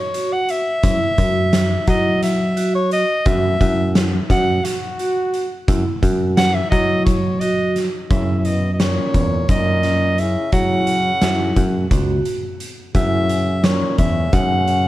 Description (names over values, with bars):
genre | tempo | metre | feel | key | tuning
progressive instrumental, band music in an uneven meter | 173 BPM (eighths) | 7/8 | straight | F# mixolydian | A4 = 440 Hz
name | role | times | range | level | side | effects
warm soprano saxophone | melody | 0.0-14.9 s | F#4 to F#5 | -21 LUFS | equal | tape echo
vibraphone with soft mallets | arpeggios | 0.1-14.9 s | C#4 to F#4 | -25 LUFS | equal | tape echo
oversized low-tuned drum kit | drums | 0.1-14.8 s | hi-hat, kick drum, snare drum | -20 LUFS | equal | none
picked electric bass | bass | 0.8-14.9 s | C#2 to F#3 | -19 LUFS | equal | none
clear trombone | second line | 8.1-14.9 s | A#2 to C#3 | -29 LUFS | right 2 dB | tape echo
room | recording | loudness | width
light reverb | dark, warm production | -15 LUFS | side -15 dB against mid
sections
0.0-8.1 A section; 8.1-14.9 B section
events
soprano saxophone solo 0.0-8.1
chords
0.0 C#madd11/F# (rootless); 8.1 F#7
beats
0.15 0.49 | 0.84 1.19 1.53 1.88 2.23 2.57 2.92 | 3.27 3.61 3.96 4.30 4.65 5.00 5.34 | 5.69 6.03 6.38 6.72 7.07 7.42 7.76 | 8.11 8.46 8.80 9.15 9.49 9.84 10.19 | 10.53 10.88 11.22 11.57 11.92 12.26 12.61 | 12.96 13.30 13.65 13.99 14.34 14.68